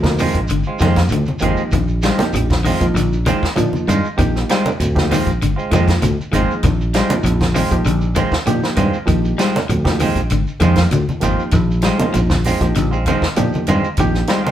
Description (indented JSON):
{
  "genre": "afrobeat",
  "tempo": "98 BPM",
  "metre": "4/4",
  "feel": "straight",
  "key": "Bb mixolydian",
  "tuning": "A4 = 440 Hz",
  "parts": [
    { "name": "reed electric piano", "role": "accompaniment", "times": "0.0-14.3 s", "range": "F3 to Bb4", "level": "-23 LUFS", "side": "right 1 dB", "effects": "none" },
    { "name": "electric guitar at the edge of break-up", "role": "arpeggios", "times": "0.0-14.5 s", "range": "D3 to G3", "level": "-22 LUFS", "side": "left 5 dB", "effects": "none" },
    { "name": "fingered electric bass", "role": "bass", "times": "0.0-14.2 s", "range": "Ab1 to Bb2", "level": "-19 LUFS", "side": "equal", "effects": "none" },
    { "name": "compact cocktail drum kit", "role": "drums", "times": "0.0-14.4 s", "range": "hi-hat, kick drum, snare drum", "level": "-21 LUFS", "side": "equal", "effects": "none" },
    { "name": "congas", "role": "percussion", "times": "0.0-14.5 s", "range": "none", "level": "-23 LUFS", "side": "right 1 dB", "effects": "none" },
    { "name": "shekere", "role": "percussion", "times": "0.0-14.5 s", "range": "none", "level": "-28 LUFS", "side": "right 2 dB", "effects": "none" },
    { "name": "semi-hollow electric guitar", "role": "stabs", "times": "0.2-14.5 s", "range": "Eb3 to F4", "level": "-22 LUFS", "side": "right 4 dB", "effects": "spring reverb" }
  ],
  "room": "moderate studio reverb, RT60 0.7 s",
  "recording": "band playing live in one room",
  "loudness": "-14 LUFS",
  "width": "side -11 dB against mid",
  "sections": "0.0-14.5 A section",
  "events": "none",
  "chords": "0.0 Bb9sus4"
}